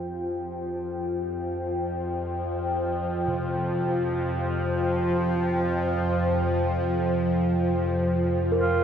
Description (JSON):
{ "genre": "dark ambient drone", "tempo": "free time", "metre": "none", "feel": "none", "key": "unclear", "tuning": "A4 = 440 Hz", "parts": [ { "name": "deep dark ambient pad", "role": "sustained chords", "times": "0.0-8.8 s", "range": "F4 to G5", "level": "-28 LUFS", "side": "left 2 dB", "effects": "chorus, built-in reverb" }, { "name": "bowed-like drone", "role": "drone", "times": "0.0-8.8 s", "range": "F2 to F3", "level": "-26 LUFS", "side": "equal", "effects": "built-in reverb, phaser" }, { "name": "bronze singing bowl", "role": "arpeggios", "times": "3.3-8.8 s", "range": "C3 to Bb4", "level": "-32 LUFS", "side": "right 2 dB", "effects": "none" }, { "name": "mellow duduk", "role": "melody", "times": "8.6-8.8 s", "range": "F4", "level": "-25 LUFS", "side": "left 2 dB", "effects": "none" } ], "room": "wet cathedral reverb, RT60 6.3 s", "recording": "cassette tape", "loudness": "-24 LUFS", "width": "side -8 dB against mid", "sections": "0.0-8.8 A section", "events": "filter sweep on synth drone 0.0-8.8", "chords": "0.0 F5", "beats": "free time" }